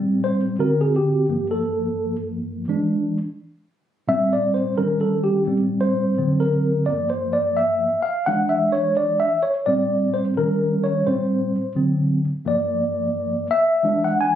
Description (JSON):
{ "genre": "hip hop", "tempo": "86 BPM", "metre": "4/4", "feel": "swing 58% on 16ths", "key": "G dorian", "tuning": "A4 = 440 Hz", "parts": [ { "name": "mellow tine electric piano", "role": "solo", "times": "0.0-14.4 s", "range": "G2 to G#5", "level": "-18 LUFS", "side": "equal", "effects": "medium stereo tremolo" } ], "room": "wet studio reverb, RT60 0.6 s", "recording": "recorded on a phone in the room, studio reverb, compression", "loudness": "-19 LUFS", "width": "side -10 dB against mid", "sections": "0.0-14.4 A section", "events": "tine electric piano solo 0.0-14.4", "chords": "0.0 Am7; 0.6 Daug7; 1.3 Gm9; 2.7 E7; 4.1 Am7; 4.8 Eb7; 5.5 Am7; 6.2 Daug7; 6.9 Gm7; 8.3 E7; 9.7 Am7; 10.4 Eb7; 11.1 Am7; 11.8 D7; 12.4 Gm7; 13.8 E7" }